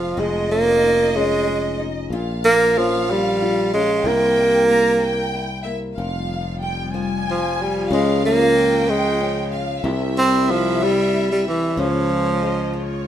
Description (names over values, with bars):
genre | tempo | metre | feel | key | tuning
pop | 62 BPM (dotted quarters) | 6/8 | straight | unclear | A4 = 440 Hz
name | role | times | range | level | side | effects
warm tenor saxophone | melody | 0.0-13.1 s | E3 to C4 | -17 LUFS | right 2 dB | plate reverb
warm studio violin section | second line | 0.0-13.1 s | Db5 to Bb5 | -28 LUFS | equal | none
flamenco guitar | accompaniment | 0.0-13.1 s | F2 to Ab4 | -27 LUFS | left 4 dB | none
sustaining fretless electric bass | bass | 0.0-13.1 s | F1 to Db2 | -26 LUFS | left 1 dB | none
warm studio string section | sustained chords | 6.0-13.1 s | C3 to F4 | -28 LUFS | left 4 dB | stereo widening
room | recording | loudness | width
wet studio reverb, RT60 0.6 s | rough home demo mix | -17 LUFS | side -10 dB against mid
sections
0.0-13.1 A section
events
none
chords
0.2 Dbadd9/F; 2.1 Bbm; 4.0 C7; 6.0 Fmadd9; 7.9 Db; 9.8 C; 11.8 Db